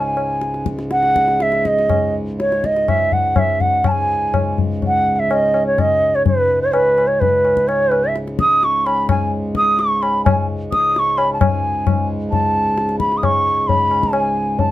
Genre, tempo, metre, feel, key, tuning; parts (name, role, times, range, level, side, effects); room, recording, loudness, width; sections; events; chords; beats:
indian classical, Hindustani; 121-134 BPM; 4/4; straight; C# raga darbari; A4 = 438 Hz
mellow bansuri; melody; 0.0-14.7 s; B4 to D#6; -16 LUFS; right 1 dB
pedal harmonium; drone; 0.0-14.7 s; C#2 to G#2; -24 LUFS; equal
tabla; percussion; 0.2-14.7 s; -20 LUFS; left 4 dB
light reverb; dark, warm production; -14 LUFS; side -14 dB against mid
0.0-3.9 A section; 3.9-11.4 B section; 11.4-14.7 A section
speeding up 0.0-14.7
0.43 0.92 1.41 | 1.91 2.40 2.88 3.37 | 3.86 4.34 4.82 5.30 | 5.78 6.26 6.74 7.21 | 7.68 8.16 8.63 9.09 | 9.56 10.03 10.49 10.95 | 11.41 11.87 12.33 12.78 | 13.23 13.69 14.14 14.59